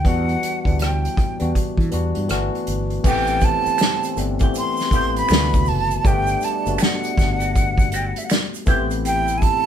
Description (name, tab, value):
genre	R&B, neo-soul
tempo	80 BPM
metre	4/4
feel	swing 63% on 16ths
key	A dorian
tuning	A4 = 440 Hz
part	breathy jazz flute	melody	0.0-9.7 s	E5 to C6	-22 LUFS	right 2 dB	none
part	barky tine electric piano	accompaniment	0.0-9.7 s	C3 to G4	-25 LUFS	left 4 dB	overdrive
part	unplugged drum kit	drums	0.0-9.6 s	crash cymbal, hi-hat, kick drum, rim click, snare drum	-20 LUFS	equal	none
part	mellow fretless electric bass	bass	0.1-9.5 s	F#1 to E3	-24 LUFS	equal	none
part	warm trombone section	stabs	3.0-9.7 s	A2 to E4	-33 LUFS	right 3 dB	none
part	egg shaker and finger snaps	percussion	3.1-9.6 s	none	-34 LUFS	right 5 dB	none
part	clean electric guitar	second line	4.4-8.9 s	B3 to C5	-27 LUFS	right 1 dB	wah
room	light reverb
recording	band playing live in one room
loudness	-17 LUFS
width	side -9 dB against mid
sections	0.0-3.0 A section; 3.0-9.7 B section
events	none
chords	0.0 Em9; 2.3 Gmaj13; 3.0 Am7; 5.3 D13; 6.0 Gmaj9; 8.7 Am7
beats	| 0.04 0.79 1.54 2.29 | 3.04 3.79 4.54 5.29 | 6.04 6.79 7.54 8.29 | 9.04